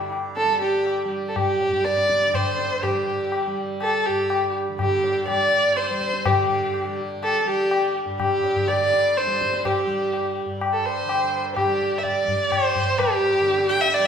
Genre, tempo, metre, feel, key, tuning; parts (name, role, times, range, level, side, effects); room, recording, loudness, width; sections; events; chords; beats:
indian classical, Hindustani; 124 BPM; 7/4; straight; A4 = 438 Hz
warm violin; melody; 0.0-14.1 s; G4 to G5; -21 LUFS; right 1 dB
tanpura; drone; 0.0-14.1 s; G2 to G3; -32 LUFS; equal
tabla; percussion; 0.1-14.1 s; -26 LUFS; left 3 dB
wet recital hall reverb, RT60 1.5 s; recorded in a church or concert hall; -20 LUFS; side -7 dB against mid
0.0-6.3 A section; 6.3-14.1 B section
speeding up 0.0-14.1
0.37 0.86 1.35 1.85 2.34 | 2.83 3.32 3.81 4.30 4.79 5.28 5.77 | 6.25 6.74 7.22 7.71 8.19 8.68 9.16 | 9.64 10.12 10.60 11.08 11.56 12.04 12.52 | 12.99 13.47 13.94